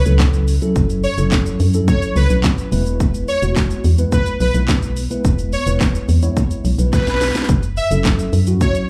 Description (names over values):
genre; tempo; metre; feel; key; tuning
dance-pop; 107 BPM; 4/4; straight; F# minor; A4 = 440 Hz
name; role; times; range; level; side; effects
soft supersaw; melody; 0.0-8.8 s; B4 to E5; -25 LUFS; equal; sidechain pumping, slapback echo, tape echo
organ-like FM bass; bass; 0.0-8.5 s; E1 to F#2; -19 LUFS; equal; sidechain pumping
mellow tine electric piano; accompaniment; 0.1-8.9 s; F#3 to C#5; -24 LUFS; equal; sidechain pumping, slapback echo
house drum kit; drums; 0.1-8.9 s; handclaps, hi-hat, kick drum, shaker, snare drum; -21 LUFS; equal; overdrive
room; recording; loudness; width
light reverb; live gig heard through the venue's PA, club ambience; -17 LUFS; mono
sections
0.0-8.9 A section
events
drum fill 6.9-7.5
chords
0.0 F#m7; 2.7 E; 7.5 F#m7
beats
0.20 | 0.76 1.32 1.88 2.44 | 3.00 3.56 4.12 4.69 | 5.25 5.81 6.37 6.93 | 7.49 8.05 8.61